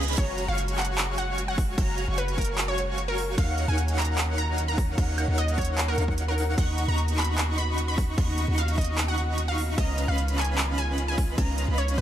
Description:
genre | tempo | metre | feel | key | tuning
future bass | 150 BPM | 4/4 | half-time | F# major | A4 = 440 Hz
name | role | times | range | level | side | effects
wide unison pluck | melody | 0.0-12.0 s | G#4 to B5 | -32 LUFS | equal | sidechain pumping, tape echo
rich studio string section | sustained chords | 0.0-12.0 s | C#3 to F#4 | -39 LUFS | right 1 dB | sidechain pumping
airy dreamy lead | arpeggios | 0.0-12.0 s | F#5 to C#6 | -36 LUFS | equal | chorus, sidechain pumping, ping-pong delay
dense compressed supersaw | riff | 0.0-12.0 s | C#4 to C#6 | -33 LUFS | right 1 dB | sidechain pumping
long sustained 808-style bass | bass | 0.0-12.0 s | F#1 to D#2 | -27 LUFS | equal | sidechain pumping
big-room dance drum kit | drums | 0.0-12.0 s | crash cymbal, handclaps, hi-hat, woodblock | -33 LUFS | right 1 dB | none
electronic kick drum | drums | 0.2-12.0 s | none | -25 LUFS | equal | none
room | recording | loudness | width
little or no reverb | none | -23 LUFS | side -11 dB against mid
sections
0.0-12.0 A section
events
break 0.0; drum fill 0.0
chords
0.2 F#maj9; 3.4 D#m9; 6.6 Bmaj9#11/D#; 9.8 C#13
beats
| 0.18 0.58 0.98 1.38 | 1.78 2.18 2.58 2.98 | 3.38 3.78 4.18 4.58 | 4.98 5.38 5.78 6.18 | 6.58 6.98 7.38 7.78 | 8.18 8.58 8.98 9.38 | 9.78 10.18 10.58 10.98 | 11.38 11.78

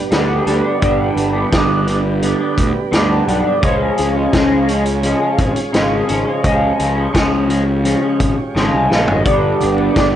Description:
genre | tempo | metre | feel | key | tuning
psychedelic rock | 86 BPM | 4/4 | straight | unclear | A4 = 439 Hz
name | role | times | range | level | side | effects
tonewheel organ | sustained chords | 0.0-10.2 s | G3 to D5 | -24 LUFS | right 3 dB | slow rotary speaker
twangy electric guitar | riff | 0.0-10.2 s | G2 to D4 | -16 LUFS | equal | flanger
fuzz picked electric bass | bass | 0.1-10.2 s | G1 to D2 | -20 LUFS | equal | overdrive
vintage drum kit | drums | 0.1-10.1 s | hi-hat, kick drum, snare drum, toms | -19 LUFS | equal | none
congas | percussion | 9.6-9.9 s | none | -30 LUFS | right 2 dB | none
room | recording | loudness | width
light reverb, small room ambience | nothing above 10.3 kHz | -13 LUFS | side -10 dB against mid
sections
0.0-10.2 A section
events
drum fill 8.6-9.3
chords
0.0 G; 3.6 C#; 9.3 G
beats
0.13 | 0.83 1.53 2.24 2.94 | 3.64 4.34 5.04 5.75 | 6.45 7.15 7.85 8.56 | 9.26 9.96

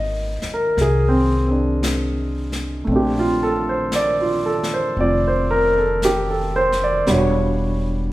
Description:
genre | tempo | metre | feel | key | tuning
jazz ballad | 57 BPM | 4/4 | swing 68% on 8ths | unclear | A4 = 439 Hz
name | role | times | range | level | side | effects
warm grand piano | accompaniment | 0.0-8.1 s | G3 to Eb5 | -18 LUFS | right 1 dB | none
upright bass | bass | 0.0-8.1 s | E1 to C2 | -23 LUFS | equal | none
jazz brush drum kit | drums | 0.4-8.1 s | brushed snare drum, hi-hat, snare drum | -31 LUFS | left 2 dB | none
room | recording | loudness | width
moderate recital hall reverb, RT60 1.4 s | recorded in a church or concert hall | -17 LUFS | side -16 dB against mid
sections
0.0-8.1 A section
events
none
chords
0.0 Ab9; 2.9 Bbmaj13; 7.1 Em7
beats
0.77 1.82 | 2.87 3.92 4.97 6.02 | 7.07 8.12

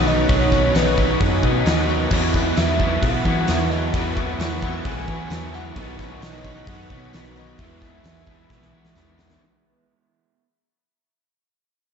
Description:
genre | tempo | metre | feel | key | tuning
rock, shoegaze and dream pop | 132 BPM | 4/4 | straight | E major | A4 = 440 Hz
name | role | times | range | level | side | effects
soft octave-layered synth lead | melody | 0.0-9.1 s | B4 to G#5 | -27 LUFS | equal | chorus, phaser, diffuse ambient delay
analog string pad | sustained chords | 0.0-9.4 s | D#4 to C#6 | -31 LUFS | equal | ensemble chorus
twangy electric guitar | arpeggios | 0.0-9.4 s | F#3 to E4 | -33 LUFS | left 8 dB | ensemble chorus, diffuse ambient delay
overdriven semi-hollow guitar | riff | 0.0-9.4 s | B2 to E4 | -27 LUFS | left 10 dB | ensemble chorus
overdriven semi-hollow guitar | riff | 0.0-9.4 s | B2 to E4 | -26 LUFS | right 10 dB | reverse reverb
vintage muted picked electric bass | bass | 0.0-9.4 s | B1 to E3 | -26 LUFS | equal | none
tambourine | percussion | 0.1-9.3 s | none | -43 LUFS | right 9 dB | none
huge arena drum kit | drums | 0.3-9.4 s | crash cymbal, hi-hat, kick drum, snare drum | -24 LUFS | equal | none
overdriven electric guitar | riff | 2.1-9.9 s | E2 to B3 | -33 LUFS | equal | ensemble chorus
room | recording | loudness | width
light reverb, studio reverb | nothing above 7.9 kHz | -18 LUFS | side -7 dB against mid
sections
0.0-9.4 A section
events
fade-out 0.0-9.4; drum fill 8.5-9.4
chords
0.0 Badd9; 2.1 Esus2; 5.8 Badd9; 7.6 Eadd9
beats
| 0.29 0.75 1.20 1.66 | 2.12 2.57 3.03 3.48 | 3.94 4.40 4.85 5.31 | 5.77 6.22 6.68 7.13 | 7.59 8.05 8.51 8.96

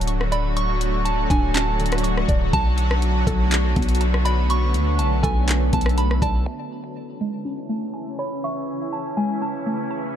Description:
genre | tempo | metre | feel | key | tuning
hip hop, atmospheric cloud-rap | 122 BPM | 4/4 | half-time | A major | A4 = 440 Hz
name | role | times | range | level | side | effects
soft synth bell | melody | 0.0-9.9 s | G#5 to C#6 | -29 LUFS | right 2 dB | chorus, low-pass filter, ping-pong delay
shimmering ambient pad | sustained chords | 0.0-10.2 s | C#3 to A4 | -26 LUFS | left 1 dB | chorus, built-in reverb, sidechain pumping, low-pass filter
mallet-like synth pluck | arpeggios | 0.0-10.2 s | D3 to C#6 | -29 LUFS | equal | chorus, phaser, low-pass filter, ping-pong delay
long sustained 808-style bass | bass | 0.0-6.5 s | D1 to D2 | -21 LUFS | equal | none
smooth R&B drum kit | drums | 0.0-6.3 s | handclaps, hi-hat, kick drum, rim click | -24 LUFS | equal | none
room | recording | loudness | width
little or no reverb | dark, warm production | -19 LUFS | side -10 dB against mid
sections
0.0-6.5 A section; 6.5-10.2 B section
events
none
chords
0.0 Dmaj7; 2.5 Bm7; 6.5 Amaj7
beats
0.07 | 0.57 1.06 1.55 2.04 | 2.53 3.02 3.52 4.01 | 4.50 4.99 5.48 5.98 | 6.47 6.96 7.45 7.94 | 8.44 8.93 9.42 9.91

